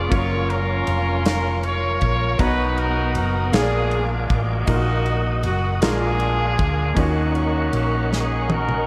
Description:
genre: slow gospel.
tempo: 53 BPM (dotted quarters).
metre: 6/8.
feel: straight.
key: Eb minor.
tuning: A4 = 440 Hz.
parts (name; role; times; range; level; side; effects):
clear horn section; melody; 0.0-8.9 s; Bb3 to Db5; -26 LUFS; equal; tape echo.
clear concert grand piano; accompaniment; 0.0-8.9 s; Bb2 to A#5; -29 LUFS; equal; none.
tonewheel organ; sustained chords; 0.0-8.9 s; B3 to D#6; -32 LUFS; equal; slow rotary speaker, chorus vibrato.
hollow-body short-scale fingered electric bass; bass; 0.0-8.8 s; F1 to Eb2; -25 LUFS; equal; none.
natural country drum kit; drums; 0.1-8.9 s; kick drum, ride cymbal, snare drum, toms; -28 LUFS; equal; none.
room: moderate cathedral reverb, RT60 6.8 s.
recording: dreamy mix soaked in reverb.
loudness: -21 LUFS.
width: mono.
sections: 0.0-8.9 A section.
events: drum fill 8.1-8.9.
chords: 0.1 Gbmaj7; 2.4 Bmaj7; 3.5 Bb7; 4.7 Ebm/Bb; 5.8 Bb7; 7.0 Ebm7.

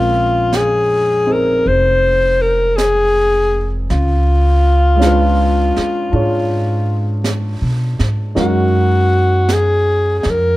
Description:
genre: jazz ballad.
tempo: 54 BPM.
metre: 4/4.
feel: swing 68% on 8ths.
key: Bb minor.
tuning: A4 = 441 Hz.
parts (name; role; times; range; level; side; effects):
breathy alto saxophone; melody; 0.0-10.6 s; F4 to C5; -15 LUFS; left 1 dB; none.
warm grand piano; accompaniment; 0.0-10.6 s; Ab3 to Db5; -22 LUFS; right 1 dB; none.
upright bass; bass; 0.0-10.6 s; F1 to Cb3; -16 LUFS; equal; none.
jazz brush drum kit; drums; 0.5-10.6 s; brushed snare drum, hi-hat, snare drum; -27 LUFS; right 3 dB; none.
room: light reverb.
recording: none.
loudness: -12 LUFS.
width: side -17 dB against mid.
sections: 0.0-10.6 A section.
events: none.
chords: 0.0 Bbm9; 3.9 Db7b9; 8.4 Gb6.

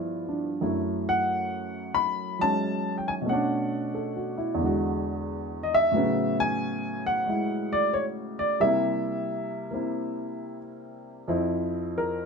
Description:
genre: solo jazz.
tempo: 90 BPM.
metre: 4/4.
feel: swing 69% on 8ths.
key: unclear.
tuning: A4 = 440 Hz.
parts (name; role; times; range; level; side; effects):
warm upright piano; solo; 0.0-12.3 s; E2 to B5; -25 LUFS; equal; none.
room: moderate studio reverb, RT60 0.8 s.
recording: none.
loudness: -25 LUFS.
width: side -5 dB against mid.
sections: 0.0-11.3 A section.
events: none.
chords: 0.0 G7; 0.6 F#m7; 3.3 Bm9; 4.6 E9; 5.9 A69; 8.6 C7; 11.3 F5.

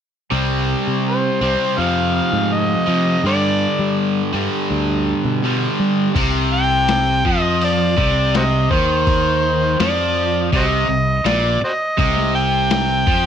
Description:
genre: blues rock power trio and southern rock.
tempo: 82 BPM.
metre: 4/4.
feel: straight.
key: C minor from 6.2 s.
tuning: A4 = 442 Hz.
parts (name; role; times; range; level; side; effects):
cranked stack guitar; riff; 0.3-13.3 s; F2 to C4; -19 LUFS; equal; overdrive.
growling fingered electric bass; bass; 0.3-13.3 s; Bb1 to G3; -21 LUFS; equal; overdrive.
overdriven harmonica; melody; 1.1-13.3 s; F#4 to G5; -19 LUFS; equal; slapback echo.
lo-fi sampler-style drum kit; drums; 6.2-13.2 s; crash cymbal, hi-hat, kick drum, snare drum; -22 LUFS; left 2 dB; none.
room: digital ambience.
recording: 1960s-style stereo.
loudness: -15 LUFS.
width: side -8 dB against mid.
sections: 0.3-6.2 A section; 6.2-13.3 B section.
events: none.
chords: 0.3 C5; 1.8 Fm7; 3.2 G; 6.2 Cm.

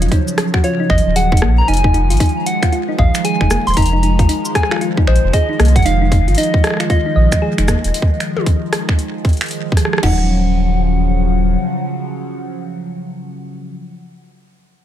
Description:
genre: IDM.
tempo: 115 BPM.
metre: 4/4.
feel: swing 62% on 16ths.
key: Eb minor.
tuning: A4 = 439 Hz.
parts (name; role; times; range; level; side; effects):
soft struck synth lead; melody; 0.0-13.8 s; C5 to C6; -21 LUFS; left 2 dB; chorus, ping-pong delay.
phased analog pad; sustained chords; 0.0-13.8 s; Db3 to Ab3; -21 LUFS; equal; phaser, chorus, sidechain pumping.
thumb-piano-like synth pluck; arpeggios; 0.0-10.3 s; Bb3 to Eb5; -23 LUFS; left 3 dB; chorus, cassette tape, digital delay.
warm sub bass; bass; 0.0-11.6 s; Eb1 to C2; -15 LUFS; equal; none.
electro analog drum machine; drums; 0.0-10.0 s; finger snaps, hi-hat, rim click, shaker, toms; -21 LUFS; equal; digital delay.
glitchy drum kit; drums; 0.1-10.2 s; crash cymbal, kick drum, snare drum; -15 LUFS; equal; overdrive.
room: little or no reverb.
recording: none.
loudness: -13 LUFS.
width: side -11 dB against mid.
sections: 0.0-10.0 A section; 10.0-14.2 B section.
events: none.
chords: 0.0 Ebm9; 1.7 Fm7; 10.0 Ebm9.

